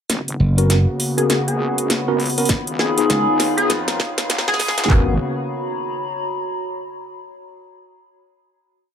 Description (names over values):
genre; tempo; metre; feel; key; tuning
glitch hop; 100 BPM; 4/4; swing 60% on 16ths; G# dorian; A4 = 442 Hz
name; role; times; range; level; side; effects
warm analog pad; sustained chords; 0.1-5.2 s; C#3 to F#4; -25 LUFS; left 1 dB; chorus, sidechain pumping
wobble bass; bass; 0.1-5.2 s; G#1 to E#2; -27 LUFS; equal; chorus, high-pass filter
drum and bass drum kit; drums; 0.1-5.0 s; hi-hat, snare drum; -21 LUFS; equal; none
warbly tape-like pad; texture; 0.8-7.3 s; D#4 to B5; -27 LUFS; equal; chorus, built-in reverb, sidechain pumping
slap bass; bass; 0.4-4.6 s; F#1 to E#2; -17 LUFS; equal; tube saturation
tine electric piano; stabs; 0.6-5.1 s; B3 to A#4; -24 LUFS; equal; medium stereo tremolo, sidechain pumping, dub echo
sync lead; melody; 1.2-4.9 s; G#4; -23 LUFS; left 1 dB; lush chorus, dub echo
drum and bass drum kit; drums; 2.5-5.1 s; handclaps, kick drum, toms; -17 LUFS; equal; none
room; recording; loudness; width
light reverb; high-pass filter; -17 LUFS; side -8 dB against mid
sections
0.1-4.9 build; 4.9-7.3 final chord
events
build-up 0.1-4.9; drum fill 0.1-4.9; filter sweep on analog synth lead 0.1-4.9; filter sweep 0.1-4.9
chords
0.1 G#m11; 2.5 C#9; 4.9 G#m11 (rootless)